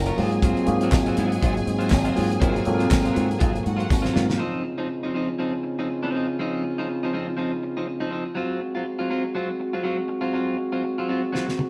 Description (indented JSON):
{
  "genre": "disco",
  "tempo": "121 BPM",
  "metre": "4/4",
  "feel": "swing 56% on 16ths",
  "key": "Db major",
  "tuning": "A4 = 439 Hz",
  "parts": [
    { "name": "rich studio string section", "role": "second line", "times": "0.0-4.2 s", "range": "Gb4 to Bb5", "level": "-37 LUFS", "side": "equal", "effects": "none" },
    { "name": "tine electric piano", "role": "accompaniment", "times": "0.0-4.4 s", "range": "Gb3 to Bb4", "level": "-27 LUFS", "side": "equal", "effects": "none" },
    { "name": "dark French horn section", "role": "sustained chords", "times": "0.0-11.7 s", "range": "Db3 to Bb4", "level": "-30 LUFS", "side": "equal", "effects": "none" },
    { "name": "fingered electric bass with an envelope filter", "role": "bass", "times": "0.0-4.3 s", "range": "Ab1 to Ab2", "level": "-28 LUFS", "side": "equal", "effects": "none" },
    { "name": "electric guitar at the edge of break-up", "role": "accompaniment", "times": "0.1-11.6 s", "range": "F3 to Bb4", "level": "-31 LUFS", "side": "equal", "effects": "none" },
    { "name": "damped 70s drum kit", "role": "drums", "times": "0.1-4.4, 11.3-11.7 s", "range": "handclaps, hi-hat, kick drum, snare drum, toms", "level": "-26 LUFS", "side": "equal", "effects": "none" },
    { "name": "tambourine", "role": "percussion", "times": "0.9-4.0 s", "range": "none", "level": "-46 LUFS", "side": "equal", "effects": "none" }
  ],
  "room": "wet stone room reverb, RT60 1.1 s",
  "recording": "band playing live in one room",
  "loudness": "-24 LUFS",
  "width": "mono",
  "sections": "0.0-4.4 A section; 4.4-11.7 A section",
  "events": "drum fill 3.9-4.4, 11.3-11.7",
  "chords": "0.2 Ab13; 4.4 Dbmaj9; 8.4 Ab6"
}